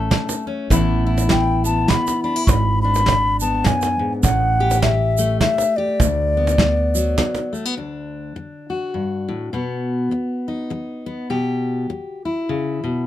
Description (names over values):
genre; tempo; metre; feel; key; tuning
acoustic folk duo or small band; 102 BPM; 3/4; swing 59% on 8ths; D major; A4 = 442 Hz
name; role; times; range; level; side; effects
mellow alto ocarina; melody; 0.0-7.5 s; D5 to C#6; -20 LUFS; left 2 dB; none
fingerpicked steel-string acoustic guitar; accompaniment; 0.0-13.1 s; D2 to G4; -23 LUFS; left 2 dB; none
upright bass; bass; 0.0-7.1 s; G#1 to D2; -20 LUFS; right 1 dB; none
cajon; percussion; 0.0-7.7 s; none; -22 LUFS; right 4 dB; none
soft brush drum kit; drums; 0.1-7.3 s; hi-hat, kick drum, snare drum; -21 LUFS; equal; none
egg shaker; percussion; 0.3-7.6 s; none; -30 LUFS; right 8 dB; none
room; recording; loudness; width
light reverb; close, detailed microphones; -17 LUFS; side -12 dB against mid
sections
0.0-7.8 A section; 7.8-13.1 B section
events
none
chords
0.0 A; 0.7 Asus2; 2.5 G#m7b5; 4.2 A5; 6.0 D6; 7.8 D5; 9.5 B; 11.3 Em/B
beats
0.12 | 0.71 1.30 1.89 | 2.48 3.06 3.65 | 4.24 4.83 5.42 | 6.00 6.59 7.18 | 7.77 8.36 8.95 | 9.54 10.13 10.72 | 11.30 11.89 12.48